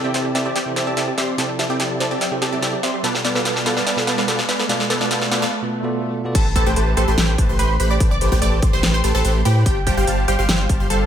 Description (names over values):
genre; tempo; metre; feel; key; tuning
future bass; 145 BPM; 4/4; half-time; A minor; A4 = 439 Hz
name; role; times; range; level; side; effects
bell-like tine electric piano; accompaniment; 0.0-6.3 s; B2 to D5; -26 LUFS; right 2 dB; fast stereo tremolo, sidechain pumping, tape echo
supersaw stab; riff; 0.0-11.1 s; G3 to C6; -22 LUFS; equal; sidechain pumping, tape echo
riser and swell; sound effects; 0.1-6.3 s; none; -29 LUFS; right 1 dB; none
wide unison pluck; arpeggios; 0.1-5.5 s; G4 to F5; -29 LUFS; right 1 dB; sidechain pumping, tape echo
big-room dance drum kit; drums; 0.1-11.0 s; crash cymbal, hi-hat, snare drum; -23 LUFS; equal; high-pass filter on snare, small room reverb, high-pass filter on hats, high-pass filter on cymbals
wide unison pluck; melody; 6.3-11.1 s; G4 to D6; -25 LUFS; right 1 dB; phaser, sidechain pumping, digital delay
saturated sub bass; bass; 6.3-11.1 s; G1 to A2; -19 LUFS; equal; sidechain pumping
electronic kick drum; drums; 6.3-10.8 s; none; -19 LUFS; equal; small room reverb
room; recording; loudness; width
light reverb, digital ambience; none; -16 LUFS; side -9 dB against mid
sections
0.0-6.3 A section; 6.3-11.1 B section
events
build-up 0.0-6.3; drum fill 0.0-5.5; riser 0.1-5.5; break 5.5-6.3; swell 5.5-6.3; drop 6.3-11.1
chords
0.0 C6; 3.0 Bm7b5; 6.3 Am9; 9.7 G7sus4